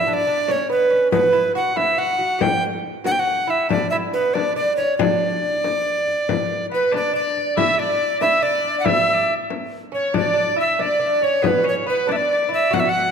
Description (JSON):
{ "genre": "medieval dance", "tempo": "93 BPM (dotted quarters)", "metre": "6/8", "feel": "straight", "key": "D major", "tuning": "A4 = 442 Hz", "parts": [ { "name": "bright reedy tenor recorder", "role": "melody", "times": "0.0-13.1 s", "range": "B4 to G5", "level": "-19 LUFS", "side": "right 1 dB", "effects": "none" }, { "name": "lute", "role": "second line", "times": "0.0-13.1 s", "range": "B3 to G4", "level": "-26 LUFS", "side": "right 6 dB", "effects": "none" }, { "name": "frame drum", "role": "percussion", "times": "0.5-12.9 s", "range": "none", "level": "-26 LUFS", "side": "left 7 dB", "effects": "none" }, { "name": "edgy shawm", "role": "second line", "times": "6.7-13.1 s", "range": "B4 to F#5", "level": "-26 LUFS", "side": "left 4 dB", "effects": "none" } ], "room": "wet concert hall reverb, RT60 1.8 s", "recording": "none", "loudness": "-17 LUFS", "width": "side -6 dB against mid", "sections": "0.0-7.6 A section; 7.6-13.1 A section", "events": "none", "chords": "none" }